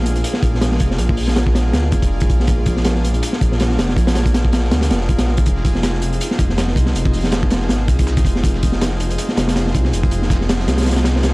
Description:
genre	drum and bass, jungle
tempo	161 BPM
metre	4/4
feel	swing 55% on 16ths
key	F dorian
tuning	A4 = 437 Hz
part	airy breathy pad	sustained chords	0.0-11.3 s	Ab3 to Ab4	-25 LUFS	equal	chorus
part	dark detuned saw bass	bass	0.0-11.3 s	F1 to D2	-18 LUFS	equal	none
part	crunchy breakbeat drum kit	drums	0.1-11.3 s	hi-hat, kick drum, snare drum	-17 LUFS	equal	none
part	dusty soul sampler-style drum kit	drums	5.5-11.3 s	hi-hat, shaker, snare drum	-33 LUFS	right 1 dB	none
room	studio ambience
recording	dry, gritty hardware recording, vinyl crackle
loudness	-14 LUFS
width	side -23 dB against mid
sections	0.0-11.3 A section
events	none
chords	0.0 Bb7; 5.5 Fm7

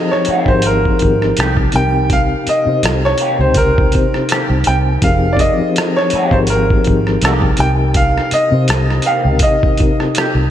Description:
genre	R&B, neo-soul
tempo	82 BPM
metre	4/4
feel	swing 54% on 16ths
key	F minor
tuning	A4 = 440 Hz
part	bright baby grand piano	melody	0.0-10.5 s	Bb4 to G5	-17 LUFS	equal	slapback echo
part	mellow reed electric piano	accompaniment	0.0-10.5 s	C3 to C5	-18 LUFS	left 3 dB	fast tremolo, slapback echo
part	boom bap sampler-style drum kit	drums	0.1-10.3 s	hi-hat, kick drum, rim click	-17 LUFS	equal	none
part	electric guitar through a small old amp	second line	0.3-10.3 s	Eb3 to G4	-23 LUFS	right 2 dB	wah, analog chorus, slapback echo
part	vintage muted fingered electric bass	bass	0.3-10.5 s	F1 to C3	-16 LUFS	equal	none
room	moderate lush hall reverb, RT60 2.8 s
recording	big arena sound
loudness	-11 LUFS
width	side -10 dB against mid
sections	0.0-10.5 A section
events	none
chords	0.0 Fm11; 1.7 Cm7; 5.0 Fm11; 7.6 Cm7

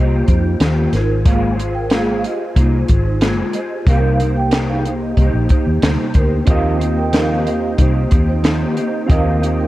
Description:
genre	indie pop, bedroom pop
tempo	92 BPM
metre	4/4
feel	straight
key	Eb major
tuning	A4 = 440 Hz
part	vibraphone with soft mallets	second line	0.0-9.7 s	D4 to G5	-24 LUFS	right 4 dB	ensemble chorus, analog delay
part	mellow electric guitar	accompaniment	0.0-9.7 s	C3 to C5	-20 LUFS	left 1 dB	ensemble chorus, warbly pitch drift
part	vintage muted fingered electric bass	bass	0.0-9.7 s	Ab1 to F2	-18 LUFS	equal	none
part	compact cocktail drum kit	drums	0.3-9.6 s	hi-hat, kick drum, snare drum	-16 LUFS	equal	none
part	soft electric-piano-like synth keys	accompaniment	6.5-9.7 s	C4 to Eb5	-23 LUFS	right 3 dB	chorus, cassette tape
room	light reverb, studio ambience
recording	echo-heavy mix, cassette tape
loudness	-13 LUFS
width	side -16 dB against mid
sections	0.0-9.7 A section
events	none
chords	0.0 Eb69; 0.9 Ab69; 3.9 Cm7; 6.5 Eb69

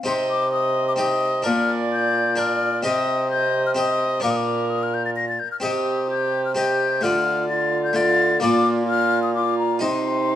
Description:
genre	classical, renaissance-style consort dance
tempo	129 BPM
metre	3/4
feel	straight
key	C dorian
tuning	A4 = 442 Hz
part	mellow hollow concert flute	melody	0.0-10.4 s	Bb5 to Bb6	-23 LUFS	left 5 dB	none
part	harpsichord	accompaniment	0.0-10.4 s	Bb2 to F5	-26 LUFS	left 3 dB	none
part	warm viola	second line	0.1-10.4 s	Eb4 to Eb5	-26 LUFS	right 6 dB	none
part	warm bassoon	bass	0.1-10.4 s	Bb2 to D3	-24 LUFS	right 1 dB	none
room	light reverb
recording	close, detailed microphones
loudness	-19 LUFS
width	side -11 dB against mid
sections	0.1-10.4 A section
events	none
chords	0.1 Cm; 1.5 Bb; 2.8 Cm; 4.2 Bb; 5.6 Cm; 7.0 Dm; 8.4 Bb; 9.8 Cm

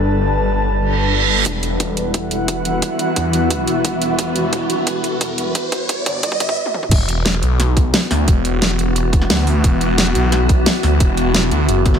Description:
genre	dark technical drum and bass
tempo	176 BPM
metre	4/4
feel	straight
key	E minor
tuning	A4 = 440 Hz
part	swarming drone	sustained chords	0.0-12.0 s	E3 to A4	-22 LUFS	left 1 dB	built-in reverb, sidechain pumping
part	phased detuned saw bass	bass	0.0-12.0 s	E1 to E2	-19 LUFS	equal	phaser, overdrive
part	airy breathy pad	texture	0.0-6.6 s	G3 to A5	-23 LUFS	left 1 dB	chorus, sidechain pumping
part	reverse cymbal and riser	sound effects	0.9-6.6 s	none	-22 LUFS	right 4 dB	none
part	dubstep drum kit	drums	1.5-12.0 s	crash cymbal, hi-hat, snare drum, toms	-19 LUFS	equal	low-pass filter on hats, small room reverb, low-pass filter on toms, low-pass filter on cymbals, low-pass filter on snare
part	electronic kick drum	drums	1.5-11.9 s	none	-17 LUFS	equal	high-pass filter on kick, small room reverb
room	light reverb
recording	high-pass filter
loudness	-14 LUFS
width	side -8 dB against mid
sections	0.0-1.5 A section; 1.5-6.9 B section; 6.9-12.0 C section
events	reverse cymbal 0.9-1.5; build-up 1.5-6.9; riser 1.5-6.6; drum fill 4.2-6.6, 6.7; drop 6.9-12.0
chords	0.0 G; 1.5 Emadd9; 6.9 Esus2

